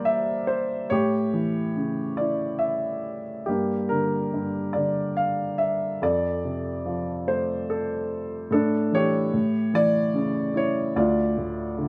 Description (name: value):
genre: classical, lyrical solo piano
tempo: 71 BPM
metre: 3/4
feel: rubato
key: D minor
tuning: A4 = 440 Hz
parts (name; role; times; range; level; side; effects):
- warm upright piano; solo; 0.0-11.9 s; D2 to F5; -25 LUFS; equal; none
room: light reverb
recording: none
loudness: -25 LUFS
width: mono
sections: 0.0-11.9 A section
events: none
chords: 0.0 Edim/G; 0.9 A7; 3.5 Gm; 6.0 Dm7/F; 8.5 A7sus4; 11.0 Dm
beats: 0.07 | 0.91 1.76 2.61 | 3.48 4.33 5.18 | 6.02 6.86 7.69 | 8.52 9.34 10.15 | 10.95 11.78